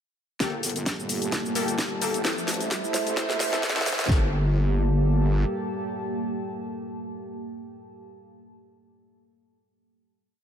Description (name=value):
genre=bass house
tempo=130 BPM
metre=4/4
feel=swing 55% on 16ths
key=G dorian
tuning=A4 = 436 Hz
part: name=dark analog pad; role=sustained chords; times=0.4-7.8 s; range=G3 to E5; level=-33 LUFS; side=right 3 dB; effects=lush chorus, sidechain pumping
part: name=orchestra-hit-like synth stab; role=stabs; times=0.4-7.8 s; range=Bb3 to C5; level=-32 LUFS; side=left 3 dB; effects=built-in reverb, sidechain pumping, digital delay
part: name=wobble bass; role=bass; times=0.4-5.4 s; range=G1 to Bb1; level=-26 LUFS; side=equal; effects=chorus, overdrive, sidechain pumping, high-pass filter
part: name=house drum kit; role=drums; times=0.4-4.2 s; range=kick drum, snare drum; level=-26 LUFS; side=equal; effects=overdrive, high-pass filter on kick, high-pass filter on snare
part: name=house drum kit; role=drums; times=0.4-4.1 s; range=hi-hat, shaker, snare drum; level=-28 LUFS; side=equal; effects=overdrive
part: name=riser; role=sound effects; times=1.5-4.1 s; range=none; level=-38 LUFS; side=equal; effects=none
part: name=warbly tape-like pad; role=texture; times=0.8-8.0 s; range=Bb3 to A5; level=-33 LUFS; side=right 1 dB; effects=chorus, built-in reverb, sidechain pumping
room=light reverb, digital ambience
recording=high-pass filter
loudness=-23 LUFS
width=side -8 dB against mid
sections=0.4-4.1 build; 4.1-7.8 final chord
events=build-up 0.4-4.1; drum fill 0.4-4.1; riser 1.5-4.1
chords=0.4 Gmadd9; 2.2 Am; 4.1 Gmadd9